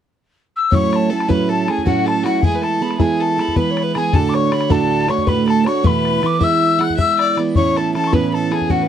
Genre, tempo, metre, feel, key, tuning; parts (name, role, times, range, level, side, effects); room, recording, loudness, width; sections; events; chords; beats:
celtic folk, Celtic slip jig; 105 BPM (dotted quarters); 9/8; straight; A major; A4 = 440 Hz
mellow hollow mid whistle; melody; 0.6-8.9 s; F#5 to F#6; -20 LUFS; left 4 dB
warm fiddle; second line; 0.7-8.9 s; F#4 to F#5; -22 LUFS; left 5 dB
picked plugged-in steel-string acoustic guitar; accompaniment; 0.7-8.9 s; D2 to F#4; -18 LUFS; right 6 dB
bodhran; percussion; 0.7-8.8 s; -20 LUFS; left 3 dB
little or no reverb; dry, close 1970s-style studio recording; -14 LUFS; side -9 dB against mid
0.7-8.9 A section
0.0 N.C.; 0.7 A6; 2.4 E; 4.1 D; 5.8 Esus4; 6.4 E; 7.6 Aadd9
0.15 | 0.72 1.29 1.86 | 2.42 2.99 3.56 | 4.13 4.70 5.27 | 5.84 6.41 6.98 | 7.55 8.12 8.70